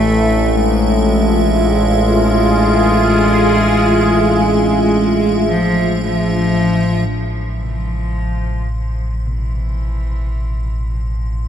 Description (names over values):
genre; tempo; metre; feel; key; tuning
ambient; 55 BPM; 4/4; straight; A harmonic minor; A4 = 440 Hz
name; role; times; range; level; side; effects
clear cello; melody; 0.0-11.5 s; E3 to A3; -18 LUFS; equal; analog delay
sweeping resonant pad; sustained chords; 0.0-7.1 s; D4 to C5; -17 LUFS; left 1 dB; chorus
gamelan-type bossed gongs; arpeggios; 0.0-11.5 s; B2 to C3; -33 LUFS; left 1 dB; analog delay
analog drone; drone; 0.0-11.5 s; A1 to A2; -17 LUFS; equal; chorus
icy glass pad; texture; 0.0-11.5 s; E5 to C6; -24 LUFS; right 5 dB; chorus, built-in reverb
room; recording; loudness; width
wet plate reverb, RT60 3.4 s; dreamy mix soaked in reverb; -13 LUFS; side -9 dB against mid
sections
0.0-7.1 A section; 7.1-11.5 B section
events
none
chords
0.0 Fm; 7.1 Am